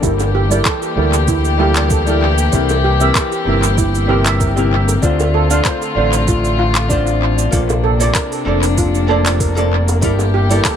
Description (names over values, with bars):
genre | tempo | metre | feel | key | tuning
sunset chillout | 96 BPM | 4/4 | swing 54% on 16ths | G dorian | A4 = 439 Hz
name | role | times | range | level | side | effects
archtop guitar, miked and amplified | accompaniment | 0.0-10.7 s | C3 to A5 | -20 LUFS | moving between left 5 dB and right 5 dB | auto-pan, low-pass filter, tape echo
warm chamber string section | sustained chords | 0.0-10.8 s | C3 to G4 | -20 LUFS | left 4 dB | none
steel pan | arpeggios | 0.0-10.8 s | E4 to F5 | -21 LUFS | right 5 dB | tape echo
overdriven fingered electric bass | bass | 0.0-10.6 s | F1 to D2 | -16 LUFS | equal | none
electronic kick drum | drums | 0.0-10.8 s | none | -19 LUFS | equal | none
smooth R&B drum kit | drums | 0.0-10.8 s | cabasa, handclaps, hi-hat | -22 LUFS | right 1 dB | tape echo
bongos | percussion | 0.2-10.3 s | none | -29 LUFS | right 3 dB | none
room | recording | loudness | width
light reverb | echo-heavy mix | -12 LUFS | side -8 dB against mid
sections
0.0-10.8 A section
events
filter sweep on hollow-body jazz guitar 0.0-10.8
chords
0.0 Gm69; 2.5 C7; 5.0 Dm7; 7.5 Bbmaj9; 10.0 Gm69